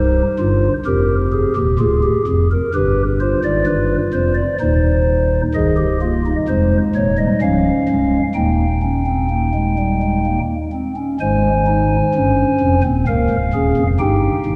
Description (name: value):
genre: classical, baroque-style 4-part fugue for pipe organ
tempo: 64 BPM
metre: 3/4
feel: straight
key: C minor, Ab major from 5.5 s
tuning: A4 = 439 Hz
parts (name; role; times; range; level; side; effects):
- pipe organ, stopped flute; solo; 0.0-14.6 s; C1 to Ab5; -17 LUFS; equal; none
room: wet church reverb, RT60 3.5 s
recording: none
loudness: -17 LUFS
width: mono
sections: 0.0-5.5 A section; 5.5-11.2 B section; 11.2-14.6 C section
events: none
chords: 0.0 Cm; 1.8 Ddim; 2.7 G7; 4.6 Cm/Eb; 5.5 Ab/C; 7.4 Db; 8.4 Eb; 11.2 Ab; 13.1 Bbm7/Db; 14.0 Eb/G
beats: 0.87 1.80 | 2.73 3.66 4.60 | 5.55 6.49 7.42 | 8.36 9.31 10.26 | 11.21 12.14 13.08 | 14.01